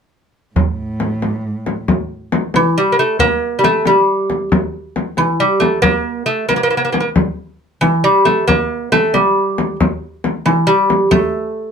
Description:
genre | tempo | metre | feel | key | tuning
Persian modal ensemble | 91 BPM (dotted quarters) | 6/8 | straight | unclear | A4 = 439 Hz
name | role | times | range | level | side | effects
dark cello | drone | 0.6-1.9 s | A2 | -23 LUFS | right 2 dB | none
frame drum | percussion | 0.6-11.2 s | none | -17 LUFS | left 3 dB | none
tombak | percussion | 0.6-1.8 s | none | -20 LUFS | right 5 dB | none
lute | melody | 2.6-11.7 s | E3 to Bb3+45c | -13 LUFS | right 1 dB | none
room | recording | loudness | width
light reverb | close, detailed microphones | -13 LUFS | side -6 dB against mid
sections
0.6-1.9 A section; 1.9-11.7 B section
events
none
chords
none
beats
| 0.56 1.22 | 1.88 2.54 | 3.20 3.86 | 4.52 5.18 | 5.84 6.50 | 7.16 7.82 | 8.48 9.13 | 9.79 10.45 | 11.11

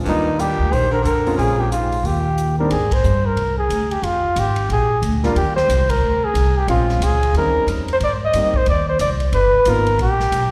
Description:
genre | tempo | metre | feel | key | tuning
jazz, small-group swing and bop | 181 BPM | 4/4 | swing 62% on 8ths | Eb major | A4 = 440 Hz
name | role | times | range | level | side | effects
clear baritone saxophone | second line | 0.0-2.6 s | G2 to Eb3 | -29 LUFS | equal | slapback echo
clear grand piano | accompaniment | 0.0-2.7, 5.2-9.9 s | Ab2 to G4 | -27 LUFS | equal | slapback echo
upright bass | bass | 0.0-10.5 s | G1 to Ab2 | -22 LUFS | equal | none
warm flugelhorn | melody | 0.1-10.5 s | Eb4 to Eb5 | -21 LUFS | equal | slapback echo
swinging big-band drum kit | drums | 0.1-10.4 s | hi-hat, kick drum, ride cymbal, snare drum | -32 LUFS | equal | none
room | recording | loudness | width
light reverb, small room ambience | live gig heard through the venue's PA, recital hall reverb | -18 LUFS | mono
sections
0.0-2.7 A section; 2.7-10.5 B section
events
band accent 2.9, 5.9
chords
0.1 Ebmaj9; 1.4 Bbm7; 2.0 Eb; 2.7 Abmaj9#11; 4.0 Fm; 4.7 Bb7; 5.4 Eb5; 6.7 Bbm7; 7.3 Eb13; 8.0 Abmaj7; 9.3 G7alt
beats
| 0.06 0.39 0.72 1.05 | 1.39 1.72 2.05 2.38 | 2.71 3.04 3.38 3.71 | 4.04 4.37 4.70 5.03 | 5.36 5.69 6.02 6.35 | 6.68 7.01 7.34 7.68 | 8.01 8.34 8.67 9.00 | 9.33 9.66 9.99 10.32

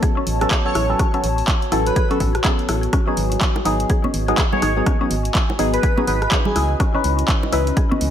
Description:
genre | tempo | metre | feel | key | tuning
deep house | 124 BPM | 4/4 | swing 60% on 16ths | unclear | A4 = 439 Hz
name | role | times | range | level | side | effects
mallet-like synth pluck | arpeggios | 0.0-8.0 s | C#4 to G#4 | -28 LUFS | left 4 dB | chorus, sidechain pumping, ping-pong delay
percussive organ stab | stabs | 0.0-8.1 s | E3 to B4 | -23 LUFS | left 1 dB | chorus, phaser, sidechain pumping, ping-pong delay
electronic kick drum | drums | 0.0-7.9 s | none | -19 LUFS | equal | none
punchy analog drum machine | drums | 0.0-8.1 s | handclaps, hi-hat, rim click | -25 LUFS | equal | none
warbly tape-like pad | texture | 0.0-8.1 s | E3 to B5 | -27 LUFS | equal | chorus, built-in reverb, sidechain pumping
organ-like FM bass | bass | 0.3-8.1 s | G#1 to C#2 | -22 LUFS | equal | sidechain pumping
airy dreamy lead | melody | 0.7-6.7 s | G#4 to C#5 | -25 LUFS | equal | chorus, ping-pong delay
bongos and congas | percussion | 3.3-8.0 s | none | -26 LUFS | right 3 dB | none
room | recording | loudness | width
light reverb | none | -16 LUFS | side -10 dB against mid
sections
0.0-8.1 A section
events
none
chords
0.0 A69; 2.9 G#m7; 6.6 C#m9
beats
0.03 0.51 | 0.99 1.48 1.96 2.44 | 2.93 3.41 3.90 4.38 | 4.86 5.35 5.83 6.32 | 6.80 7.28 7.77

